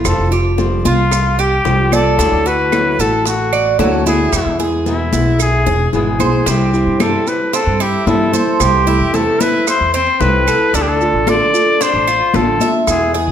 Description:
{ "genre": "latin, Cuban son and guajira", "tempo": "112 BPM", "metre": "4/4", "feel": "straight", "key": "unclear", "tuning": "A4 = 440 Hz", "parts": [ { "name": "nylon-string guitar", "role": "accompaniment", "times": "0.0-13.3 s", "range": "B2 to F#4", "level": "-19 LUFS", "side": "equal", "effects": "none" }, { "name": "Cuban tres", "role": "arpeggios", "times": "0.0-13.3 s", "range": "C4 to E5", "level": "-19 LUFS", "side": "right 4 dB", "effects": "slapback echo" }, { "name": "upright bass", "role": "bass", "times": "0.0-13.3 s", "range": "E1 to G2", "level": "-18 LUFS", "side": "equal", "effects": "none" }, { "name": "breathy trumpet", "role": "melody", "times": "0.1-13.1 s", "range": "E4 to D5", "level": "-17 LUFS", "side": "left 2 dB", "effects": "none" }, { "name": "bongos", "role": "percussion", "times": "0.1-13.3 s", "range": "none", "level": "-26 LUFS", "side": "left 6 dB", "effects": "none" }, { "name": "claves", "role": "percussion", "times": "0.1-13.1 s", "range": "none", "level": "-29 LUFS", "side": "right 7 dB", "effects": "none" }, { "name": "congas", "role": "percussion", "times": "0.1-13.3 s", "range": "none", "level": "-23 LUFS", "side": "left 4 dB", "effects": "none" }, { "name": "maracas", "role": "percussion", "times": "0.1-13.3 s", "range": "none", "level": "-27 LUFS", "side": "right 9 dB", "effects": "none" } ], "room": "wet large studio reverb, RT60 1.3 s", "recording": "none", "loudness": "-12 LUFS", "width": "side -9 dB against mid", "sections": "0.0-6.5 A section; 6.5-13.3 B section", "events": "drum fill 5.4-6.5", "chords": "0.1 Fsus2; 2.2 Dadd9; 4.3 E; 6.5 C; 8.6 Am/C; 10.7 Dm", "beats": "| 0.05 0.59 1.12 1.66 | 2.19 2.73 3.26 3.80 | 4.33 4.87 5.40 5.93 | 6.47 7.00 7.54 8.07 | 8.61 9.14 9.68 10.21 | 10.74 11.28 11.81 12.35 | 12.88" }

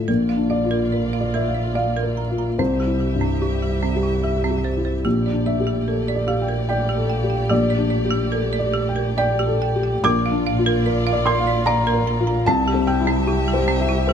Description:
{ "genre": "neoclassical piano and strings", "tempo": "73 BPM", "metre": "3/4", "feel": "rubato", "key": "unclear", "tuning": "A4 = 440 Hz", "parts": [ { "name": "felt-muted upright piano", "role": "accompaniment", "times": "0.0-14.1 s", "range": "Bb1 to D6", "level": "-21 LUFS", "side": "left 3 dB", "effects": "none" }, { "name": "rich chamber string section", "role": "sustained chords", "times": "0.0-14.1 s", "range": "G3 to E5", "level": "-29 LUFS", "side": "equal", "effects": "none" }, { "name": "folk marimba with hard mallets", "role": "arpeggios", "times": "0.1-14.1 s", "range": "C4 to Bb5", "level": "-27 LUFS", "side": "right 8 dB", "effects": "slapback echo" }, { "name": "rich double bass", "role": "bass", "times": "0.1-14.1 s", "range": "Bb1 to C2", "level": "-24 LUFS", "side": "right 2 dB", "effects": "none" } ], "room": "little or no reverb", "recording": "close, detailed microphones", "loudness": "-18 LUFS", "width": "side -8 dB against mid", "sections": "0.1-14.1 A section", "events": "none", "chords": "0.1 Bb; 2.6 C; 5.1 Gmadd9/Bb; 10.0 Bb; 12.5 C", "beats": "| 0.08 0.93 1.75 | 2.59 3.42 4.23 | 5.05 5.87 6.69 | 7.51 8.32 9.18 | 10.04 10.86 11.67 | 12.47 13.27 14.09" }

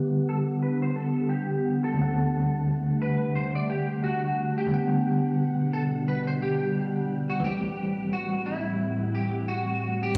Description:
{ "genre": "trip hop", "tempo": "88 BPM", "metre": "4/4", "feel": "swing 57% on 16ths", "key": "unclear", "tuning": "A4 = 440 Hz", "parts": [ { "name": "bell-like tine electric piano", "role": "accompaniment", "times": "0.0-10.2 s", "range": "D3 to F#5", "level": "-30 LUFS", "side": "equal", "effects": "tremolo, tape echo" }, { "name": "warbly tape-like pad", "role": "sustained chords", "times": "0.0-10.2 s", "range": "A2 to F#5", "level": "-33 LUFS", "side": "equal", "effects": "chorus, built-in reverb, phaser, vintage 12-bit sampler grit" }, { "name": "wind-like tuned noise texture", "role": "texture", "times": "0.0-10.2 s", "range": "G3 to F#5", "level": "-39 LUFS", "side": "equal", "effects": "built-in reverb" }, { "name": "clean electric guitar", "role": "melody", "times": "0.3-10.2 s", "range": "E4 to D5", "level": "-34 LUFS", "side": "equal", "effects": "ensemble chorus, tape echo" } ], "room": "moderate echo chamber reverb, RT60 2.4 s", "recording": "played on a big sound system in a bare room, large studio reverb, low-pass filter", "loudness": "-27 LUFS", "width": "mono", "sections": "0.0-10.2 A section", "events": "filter sweep 0.0-10.2", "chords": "0.0 Em7; 2.0 D7; 4.7 Gmaj7; 7.4 Am7", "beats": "0.61 1.29 | 1.97 2.65 3.33 4.02 | 4.70 5.38 6.06 6.74 | 7.43 8.11 8.79 9.47 | 10.15" }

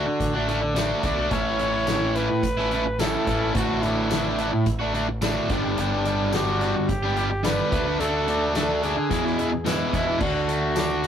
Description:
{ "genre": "indie rock", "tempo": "108 BPM", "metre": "4/4", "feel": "straight", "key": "unclear", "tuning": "A4 = 443 Hz", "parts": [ { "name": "breathy trumpet", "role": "melody", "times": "0.0-11.1 s", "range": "D4 to D5", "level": "-28 LUFS", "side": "right 1 dB", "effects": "none" }, { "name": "crunchy overdriven guitar", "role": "riff", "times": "0.0-11.1 s", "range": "E2 to G4", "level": "-23 LUFS", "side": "equal", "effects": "none" }, { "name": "growling fingered electric bass", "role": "bass", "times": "0.0-11.1 s", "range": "G1 to E2", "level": "-30 LUFS", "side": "equal", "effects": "overdrive" }, { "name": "loose indie drum kit", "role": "drums", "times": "0.2-11.1 s", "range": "crash cymbal, hi-hat, kick drum, snare drum, tambourine", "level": "-29 LUFS", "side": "left 1 dB", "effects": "none" } ], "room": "moderate small room reverb, RT60 0.5 s", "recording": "rough rehearsal-room recording", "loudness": "-21 LUFS", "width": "side -8 dB against mid", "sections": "0.0-10.2 A section", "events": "none", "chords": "0.0 D; 1.3 A; 3.5 Dadd9/A; 5.5 Gmaj7; 7.7 D; 9.1 E; 10.2 D", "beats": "0.20 0.76 | 1.32 1.88 2.43 2.99 | 3.55 4.11 4.66 5.22 | 5.77 6.33 6.88 7.44 | 7.99 8.55 9.10 9.65 | 10.21 10.76" }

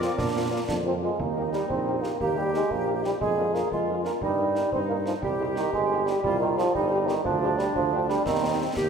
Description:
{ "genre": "military-style march for wind band", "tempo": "119 BPM (dotted quarters)", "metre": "6/8", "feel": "straight", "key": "Eb major", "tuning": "A4 = 440 Hz", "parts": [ { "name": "warm cornet", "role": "melody", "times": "0.0-8.7 s", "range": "Bb4 to D5", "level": "-47 LUFS", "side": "equal", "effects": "none" }, { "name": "clear euphonium", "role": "second line", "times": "0.0-8.7 s", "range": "Eb3 to D4", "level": "-26 LUFS", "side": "right 3 dB", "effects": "none" }, { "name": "mellow woodwind section", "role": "second line", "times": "0.0-8.9 s", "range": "C4 to Bb4", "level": "-31 LUFS", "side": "left 1 dB", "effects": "none" }, { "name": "wooden piccolo", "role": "second line", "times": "0.0-0.6 s", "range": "D6", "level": "-38 LUFS", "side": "left 1 dB", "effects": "none" }, { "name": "clear French horn section", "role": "accompaniment", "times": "0.0-8.7 s", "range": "F3 to G4", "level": "-33 LUFS", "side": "left 6 dB", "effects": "none" }, { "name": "warm trombone section", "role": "sustained chords", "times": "0.0-1.0 s", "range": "none", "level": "barely audible", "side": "none", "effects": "none" }, { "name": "warm tuba", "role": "bass", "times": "0.0-8.9 s", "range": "G1 to Bb2", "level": "-31 LUFS", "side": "right 3 dB", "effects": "none" }, { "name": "concert snare drum and concert bass drum", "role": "drums", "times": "0.0-8.9 s", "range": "none", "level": "-37 LUFS", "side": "left 1 dB", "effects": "none" } ], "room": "wet scoring stage reverb, RT60 2.1 s", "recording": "none", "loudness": "-23 LUFS", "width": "side -6 dB against mid", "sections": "0.0-1.2 A section; 1.2-8.9 B section", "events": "none", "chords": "0.0 Bb; 1.2 Eb; 3.2 Bb7/F; 4.2 Eb/G; 5.2 Cm; 7.2 G7/D; 8.3 Cm/Eb", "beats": "| 0.18 0.69 | 1.19 1.70 | 2.20 2.71 | 3.21 3.71 | 4.22 4.72 | 5.23 5.73 | 6.24 6.74 | 7.25 7.75 | 8.26 8.76" }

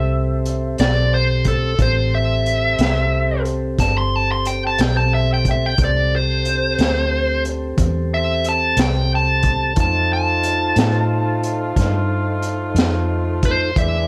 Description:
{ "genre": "slow blues", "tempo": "60 BPM (dotted quarters)", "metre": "12/8", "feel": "straight", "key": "A minor", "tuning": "A4 = 440 Hz", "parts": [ { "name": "dark smooth lead guitar", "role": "melody", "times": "0.0-14.1 s", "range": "A4 to C6", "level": "-22 LUFS", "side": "equal", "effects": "overdrive, plate reverb" }, { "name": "mellow tonewheel organ", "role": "sustained chords", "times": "0.0-14.1 s", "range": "C4 to D5", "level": "-28 LUFS", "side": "equal", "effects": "slow rotary speaker" }, { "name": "vintage muted fingered electric bass", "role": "bass", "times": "0.0-14.1 s", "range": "G1 to A2", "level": "-22 LUFS", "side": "equal", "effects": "none" }, { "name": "crunchy breakbeat drum kit", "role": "drums", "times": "0.5-13.9 s", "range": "hi-hat, kick drum, snare drum", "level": "-23 LUFS", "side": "equal", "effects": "none" }, { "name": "warm horn section", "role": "sustained chords", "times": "9.8-14.1 s", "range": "G#3 to F4", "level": "-31 LUFS", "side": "equal", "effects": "none" } ], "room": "light reverb", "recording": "none", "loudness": "-18 LUFS", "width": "mono", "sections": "0.0-14.1 A section", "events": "lead electric guitar solo 0.0-14.1", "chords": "0.0 Am9; 9.8 F7", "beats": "0.79 | 1.79 2.79 3.79 4.78 | 5.78 6.78 7.78 8.77 | 9.77 10.77 11.77 12.76 | 13.76" }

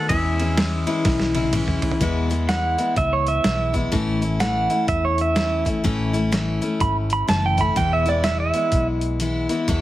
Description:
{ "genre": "honky-tonk and classic country", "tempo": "125 BPM", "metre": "4/4", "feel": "swing 62% on 8ths", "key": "E major", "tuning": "A4 = 435 Hz", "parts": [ { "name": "twangy electric guitar", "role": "melody", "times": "0.0-1.5 s", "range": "G#4 to E5", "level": "-27 LUFS", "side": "left 1 dB", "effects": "tape echo" }, { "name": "picked steel-string acoustic guitar", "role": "accompaniment", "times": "0.0-9.8 s", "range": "E2 to F#4", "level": "-23 LUFS", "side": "left 3 dB", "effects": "none" }, { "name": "vintage muted fingered electric bass", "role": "bass", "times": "0.1-9.8 s", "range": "E1 to E2", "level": "-24 LUFS", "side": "equal", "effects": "none" }, { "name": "boom bap sampler-style drum kit", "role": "drums", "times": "0.1-9.8 s", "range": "hi-hat, kick drum, ride cymbal, snare drum, toms", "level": "-25 LUFS", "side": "equal", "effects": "none" }, { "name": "pedal steel guitar", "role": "second line", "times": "2.5-8.9 s", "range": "C#5 to B5", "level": "-22 LUFS", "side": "right 3 dB", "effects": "none" } ], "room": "light reverb", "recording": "heavily compressed radio sound, multiband compression", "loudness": "-18 LUFS", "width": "side -14 dB against mid", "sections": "0.0-2.0 A section; 2.0-9.8 B section", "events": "drum fill 1.1-2.0; pedal steel guitar solo 2.0-9.8; kick and snare drop out 9.2-9.7", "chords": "0.1 E6; 3.9 A; 7.8 E", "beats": "| 0.10 0.58 1.06 1.53 | 2.01 2.49 2.97 3.45 | 3.93 4.41 4.89 5.37 | 5.84 6.33 6.80 7.28 | 7.76 8.24 8.72 9.20 | 9.68" }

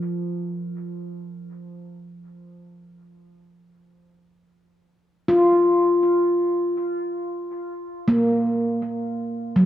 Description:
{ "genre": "ambient", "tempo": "free time", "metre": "none", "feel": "none", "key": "unclear", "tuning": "A4 = 440 Hz", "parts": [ { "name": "handpan", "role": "solo", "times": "0.0-9.7 s", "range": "F3 to F4", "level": "-20 LUFS", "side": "equal", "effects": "dub echo" } ], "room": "wet spring reverb, RT60 2.2 s", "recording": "echo-heavy mix", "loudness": "-20 LUFS", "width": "side -12 dB against mid", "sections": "0.0-8.6 A section; 8.6-9.7 B section", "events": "none", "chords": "0.0 N.C.; 8.6 Gbmaj7 (rootless)", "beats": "free time" }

